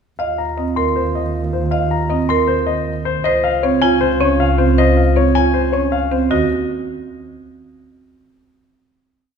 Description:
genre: classical, minimalist pattern music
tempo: 157 BPM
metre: 4/4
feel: straight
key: unclear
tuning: A4 = 439 Hz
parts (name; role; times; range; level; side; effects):
- dark grand piano; melody; 0.2-6.5 s; C5 to C6; -19 LUFS; left 8 dB; none
- mellow French horn; second line; 0.2-6.1 s; F4; -26 LUFS; right 1 dB; none
- marimba with medium mallets; arpeggios; 0.2-6.5 s; C4 to Eb5; -19 LUFS; right 5 dB; none
- dark studio double bass section; bass; 0.2-6.5 s; Db2 to Eb2; -20 LUFS; right 1 dB; none
room: wet scoring stage reverb, RT60 2.0 s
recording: heard from further back in the room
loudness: -14 LUFS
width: side -6 dB against mid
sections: 0.2-6.3 A section; 6.3-7.8 final chord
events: none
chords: 0.2 Ebsus2; 3.3 Dbmaj7; 6.3 Ebm

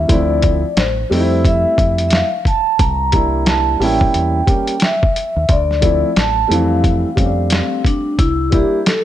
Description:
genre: hip hop, jazz-hop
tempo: 89 BPM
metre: 4/4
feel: swing 62% on 16ths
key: F major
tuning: A4 = 440 Hz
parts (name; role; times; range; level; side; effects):
- vibraphone with soft mallets; melody; 0.0-9.0 s; C4 to Bb5; -18 LUFS; equal; slapback echo
- dark upright piano; accompaniment; 0.0-8.8 s; E3 to G4; -19 LUFS; right 1 dB; none
- deep dub fingered electric bass; bass; 0.0-8.6 s; A1 to F2; -19 LUFS; equal; none
- lo-fi sampler-style drum kit; drums; 0.1-9.0 s; hi-hat, kick drum, snare drum; -16 LUFS; equal; overdrive, vintage 12-bit sampler grit
room: light reverb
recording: none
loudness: -13 LUFS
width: side -12 dB against mid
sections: 0.0-8.2 A section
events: none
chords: 0.1 Dm7; 1.1 Fmaj9; 2.8 C9; 3.8 A7b9; 5.5 Dm7; 6.5 Fmaj9; 8.2 C9

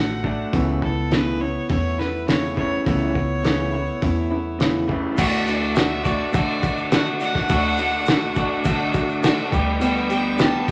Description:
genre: folk rock and heartland rock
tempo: 103 BPM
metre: 4/4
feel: straight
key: D major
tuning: A4 = 440 Hz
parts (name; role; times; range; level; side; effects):
- clear fiddle; melody; 0.0-10.7 s; A4 to A5; -31 LUFS; equal; none
- picked acoustic archtop guitar; accompaniment; 0.0-10.7 s; C#3 to G4; -28 LUFS; equal; none
- electric guitar through a small old amp; riff; 0.0-10.7 s; C#3 to G4; -30 LUFS; equal; none
- upright bass; bass; 0.0-10.5 s; A1 to D3; -30 LUFS; equal; none
- cloth-damped thuddy drum kit; drums; 0.2-10.7 s; crash cymbal, hi-hat, kick drum, snare drum; -24 LUFS; equal; none
- tonewheel organ; sustained chords; 4.9-10.7 s; G3 to C5; -36 LUFS; equal; none
- egg shaker; percussion; 5.2-10.7 s; none; -51 LUFS; equal; none
room: moderate large studio reverb, RT60 0.9 s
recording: none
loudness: -21 LUFS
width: mono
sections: 0.0-5.2 A section; 5.2-10.7 B section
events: none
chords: 0.0 D; 0.5 Aadd9/C#; 5.2 D; 9.5 G/D

